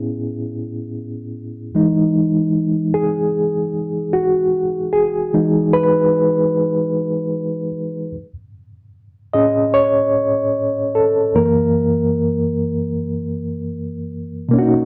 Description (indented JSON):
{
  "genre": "R&B",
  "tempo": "75 BPM",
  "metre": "4/4",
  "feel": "swing 60% on 16ths",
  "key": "E major",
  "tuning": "A4 = 440 Hz",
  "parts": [
    { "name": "reed electric piano", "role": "solo", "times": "0.0-14.9 s", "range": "F#2 to D#5", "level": "-18 LUFS", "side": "equal", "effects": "fast tremolo, slapback echo" }
  ],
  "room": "moderate booth ambience, RT60 0.2 s",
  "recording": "dry, close 1970s-style studio recording",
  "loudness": "-18 LUFS",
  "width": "mono",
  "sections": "0.0-1.7 A section; 1.7-14.5 A section",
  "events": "reed electric piano solo 1.7-14.5",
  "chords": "0.0 Amaj9; 1.7 Emaj9; 8.1 Amaj7; 11.3 F#7"
}